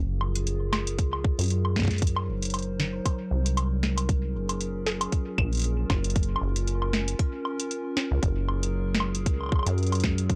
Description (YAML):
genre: IDM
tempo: 116 BPM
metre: 4/4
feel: swing 56% on 16ths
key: Gb lydian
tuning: A4 = 441 Hz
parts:
  - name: warbly tape-like pad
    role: sustained chords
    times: 0.0-10.4 s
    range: Gb3 to C5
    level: -36 LUFS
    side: equal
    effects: chorus, built-in reverb, vintage 12-bit sampler grit, sidechain pumping
  - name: deep acid bass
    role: bass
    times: 0.0-10.4 s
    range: Gb1 to Gb2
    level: -30 LUFS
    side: equal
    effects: tube saturation
  - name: booming analog drum machine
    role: drums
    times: 0.2-10.4 s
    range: hi-hat, snare drum, woodblock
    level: -32 LUFS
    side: equal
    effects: none
  - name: electronic kick drum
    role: drums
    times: 1.0-10.4 s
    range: none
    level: -28 LUFS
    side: equal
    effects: none
room: little or no reverb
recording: dry, gritty hardware recording, transformer saturation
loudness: -27 LUFS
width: mono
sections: 0.0-10.4 A section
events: none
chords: 0.0 Gbmaj9; 2.0 Ebm6/Gb; 4.1 Gbmaj9; 6.2 Db6/Gb; 8.2 Gbmaj9